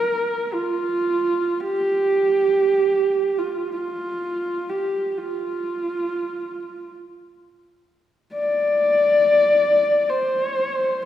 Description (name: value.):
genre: mongolian traditional, Mongolian folk.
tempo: free time.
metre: none.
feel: none.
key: F zhi mode.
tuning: A4 = 440 Hz.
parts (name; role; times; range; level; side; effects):
dark horsehead fiddle; solo; 0.0-11.0 s; F4 to D5; -19 LUFS; equal; none.
room: wet concert hall reverb, RT60 2.0 s.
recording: heard from further back in the room.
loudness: -19 LUFS.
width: side -11 dB against mid.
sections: 0.0-11.1 A section.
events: none.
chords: none.